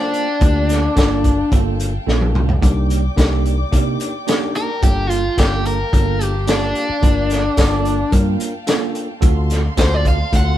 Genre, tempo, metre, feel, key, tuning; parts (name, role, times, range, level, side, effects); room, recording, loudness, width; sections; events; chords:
straight-eighth soul blues; 109 BPM; 4/4; straight; G minor; A4 = 438 Hz
overdriven electric guitar; melody; 0.0-10.6 s; D4 to F#5; -20 LUFS; left 2 dB; spring reverb
bright tine electric piano; accompaniment; 0.0-10.6 s; Bb3 to C5; -24 LUFS; right 4 dB; slow stereo tremolo
rich studio string section; sustained chords; 0.0-10.6 s; D5 to D6; -30 LUFS; left 1 dB
crunchy breakbeat drum kit; drums; 0.1-10.5 s; hi-hat, kick drum, snare drum, tambourine, toms; -17 LUFS; equal
vintage muted fingered electric bass; bass; 0.4-10.5 s; G1 to C3; -19 LUFS; equal
light reverb; band playing live in one room; -14 LUFS; side -12 dB against mid
0.0-10.6 A section
overdriven electric guitar solo 0.0-10.6; drum fill 2.1-2.6
0.0 Gm9; 2.6 Cm9; 4.8 Gm9; 9.2 D7#9